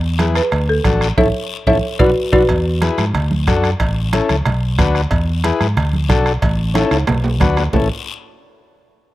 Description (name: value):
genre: latin, cumbia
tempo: 183 BPM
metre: 4/4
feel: straight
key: A major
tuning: A4 = 441 Hz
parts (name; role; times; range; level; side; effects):
- fingered electric bass; bass; 0.0-7.9 s; A1 to G#2; -18 LUFS; equal; none
- folk marimba with medium hard mallets; melody; 0.2-2.4 s; F#4 to E5; -17 LUFS; equal; none
- combo organ; accompaniment; 0.2-7.9 s; C#4 to B4; -21 LUFS; left 5 dB; none
- bombo; percussion; 0.2-7.8 s; none; -20 LUFS; right 1 dB; none
- congas; percussion; 0.2-7.8 s; none; -23 LUFS; right 2 dB; none
- cowbell and timbales; percussion; 0.2-7.8 s; none; -25 LUFS; right 4 dB; none
- guiro; percussion; 0.2-7.8 s; none; -30 LUFS; left 8 dB; none
room: small room ambience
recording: dry, close 1970s-style studio recording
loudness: -14 LUFS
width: side -16 dB against mid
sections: 0.0-2.5 A section; 2.5-7.7 B section; 7.7-9.0 C section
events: band accent 1.2-2.5; drum fill 1.7-2.5, 6.8-7.7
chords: 0.0 E; 0.5 D; 1.2 A; 1.8 Bm; 2.5 E; 3.1 D; 3.8 A; 4.5 Bm; 5.1 E; 5.8 D; 6.4 A; 7.1 Bm; 7.7 A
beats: 0.19 0.52 0.85 | 1.18 1.51 1.83 2.16 | 2.49 2.82 3.15 3.48 | 3.80 4.13 4.46 4.79 | 5.11 5.44 5.77 6.10 | 6.42 6.75 7.08 7.41 | 7.73